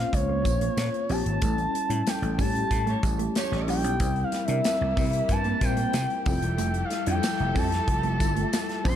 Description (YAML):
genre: polished 1980s jazz-funk pop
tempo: 93 BPM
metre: 4/4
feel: straight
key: F major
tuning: A4 = 439 Hz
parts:
  - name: expressive portamento lead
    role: melody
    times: 0.0-9.0 s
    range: Db5 to C6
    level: -29 LUFS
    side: equal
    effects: chorus
  - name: tine electric piano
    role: accompaniment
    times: 0.0-9.0 s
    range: G3 to Db5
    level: -31 LUFS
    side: left 4 dB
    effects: fast stereo tremolo, lush chorus
  - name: vintage slap bass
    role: bass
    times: 0.0-9.0 s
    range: E1 to C3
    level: -28 LUFS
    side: equal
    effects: none
  - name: modern studio drum kit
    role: drums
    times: 0.1-9.0 s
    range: hi-hat, kick drum, snare drum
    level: -29 LUFS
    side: equal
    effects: none
  - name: tambourine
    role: percussion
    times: 0.1-9.0 s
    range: none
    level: -43 LUFS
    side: right 10 dB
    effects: none
  - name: mellow electric guitar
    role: riff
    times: 0.3-9.0 s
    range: A3 to D4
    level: -35 LUFS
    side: right 5 dB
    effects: lush chorus
  - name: mellow horn section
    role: second line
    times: 2.9-3.8 s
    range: A3 to C#5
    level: -36 LUFS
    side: right 5 dB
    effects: none
  - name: warm studio string section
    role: sustained chords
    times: 4.0-9.0 s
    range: C3 to E5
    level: -39 LUFS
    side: right 1 dB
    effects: none
room: light reverb, small room ambience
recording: dark, warm production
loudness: -23 LUFS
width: side -10 dB against mid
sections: 0.0-9.0 A section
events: band accent 1.4-4.0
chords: 0.0 Bbmadd9; 1.4 A7; 4.0 C7; 6.3 Fmaj9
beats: 0.13 0.77 | 1.42 2.06 2.71 3.36 | 4.00 4.65 5.30 5.94 | 6.59 7.24 7.88 8.53